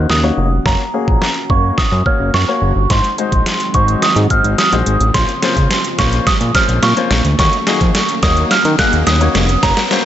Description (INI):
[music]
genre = dance-pop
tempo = 107 BPM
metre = 4/4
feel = straight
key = unclear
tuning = A4 = 441 Hz
[part]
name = soft synth bell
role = melody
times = 0.0-10.1 s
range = Bb5 to Gb6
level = -17 LUFS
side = right 2 dB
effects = chorus, low-pass filter, ping-pong delay
[part]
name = clear baby grand piano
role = accompaniment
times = 0.0-10.1 s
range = Ab3 to Db5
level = -21 LUFS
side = left 5 dB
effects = sidechain pumping, low-pass filter
[part]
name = chorused pulse-width pad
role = sustained chords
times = 0.0-10.1 s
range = Db3 to Gb4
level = -26 LUFS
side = right 1 dB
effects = sidechain pumping, low-pass filter
[part]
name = fat analog bass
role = bass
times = 0.0-9.7 s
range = F1 to Eb3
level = -16 LUFS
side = equal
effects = sidechain pumping
[part]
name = riser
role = sound effects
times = 0.6-10.1 s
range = none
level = -27 LUFS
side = equal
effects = none
[part]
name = smooth R&B drum kit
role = drums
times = 0.1-10.0 s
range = hi-hat, kick drum, snare drum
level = -16 LUFS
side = equal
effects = none
[sound]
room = digital ambience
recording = nothing above 7.9 kHz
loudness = -11 LUFS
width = side -11 dB against mid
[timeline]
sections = 0.0-10.1 A section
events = build-up 0.0-10.1; drum fill 0.0-10.1; filter sweep 0.0-10.1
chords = 0.0 Ebm7; 0.7 Gb; 2.9 Ab7; 5.1 Bbmadd9; 7.4 Ebm7